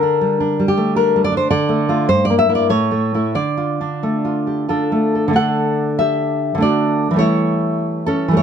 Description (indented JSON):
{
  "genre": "romantic piece for solo classical guitar",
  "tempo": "88-111 BPM",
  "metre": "3/4",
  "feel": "rubato",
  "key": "D minor, D major from 5.4 s",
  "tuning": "A4 = 443 Hz",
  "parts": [
    { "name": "nylon-string guitar", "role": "solo", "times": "0.0-8.4 s", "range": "G2 to F#5", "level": "-15 LUFS", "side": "equal", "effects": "none" }
  ],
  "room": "light reverb",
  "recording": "none",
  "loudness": "-15 LUFS",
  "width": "side -8 dB against mid",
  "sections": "0.0-5.4 A section; 5.4-8.4 B section",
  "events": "none",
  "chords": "0.0 Gm/D; 1.5 Dm; 2.1 Edim/G; 2.7 A; 3.4 Dm; 5.4 D; 7.2 A7/E"
}